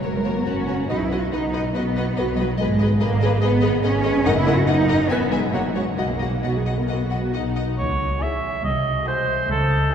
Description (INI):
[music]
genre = quick classical-period movement for symphony orchestra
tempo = 131-146 BPM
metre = 4/4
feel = rubato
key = B major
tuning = A4 = 441 Hz
[part]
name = rich chamber violin section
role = melody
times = 0.0-9.9 s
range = C#5 to G#5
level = -32 LUFS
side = left 4 dB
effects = none
[part]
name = warm symphonic violin section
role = second line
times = 0.0-9.9 s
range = F#4 to E5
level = -30 LUFS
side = left 3 dB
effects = none
[part]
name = warm studio viola section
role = accompaniment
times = 0.0-9.9 s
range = D#4 to B4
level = -28 LUFS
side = right 1 dB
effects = none
[part]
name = clear chamber double bass section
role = bass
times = 0.0-9.8 s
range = E1 to C#2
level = -24 LUFS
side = right 1 dB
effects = none
[part]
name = warm chamber cello section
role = bass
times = 0.0-9.8 s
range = B#1 to F#4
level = -23 LUFS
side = equal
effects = none
[part]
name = timpani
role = percussion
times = 0.9-1.5, 4.3-4.8 s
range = F#2 to B2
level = -29 LUFS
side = left 2 dB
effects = none
[part]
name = warm cor anglais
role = second line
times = 7.8-9.9 s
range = A4 to E5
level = -22 LUFS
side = right 2 dB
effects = none
[sound]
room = wet cathedral reverb, RT60 5.3 s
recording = heard from further back in the room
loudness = -19 LUFS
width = side -8 dB against mid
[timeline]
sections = 0.0-7.8 A section; 7.8-9.9 B section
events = none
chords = 0.0 F#5; 0.9 B; 2.6 G#m; 4.3 D#m/F#; 5.1 E; 5.5 F#; 6.0 B; 7.8 C#m; 8.6 G#7/B#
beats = 0.04 0.46 | 0.90 1.32 1.75 2.17 | 2.60 3.02 3.43 3.84 | 4.26 4.67 5.10 5.53 | 5.98 6.43 6.89 7.34 | 7.79 8.22 8.64 9.07 | 9.50 9.93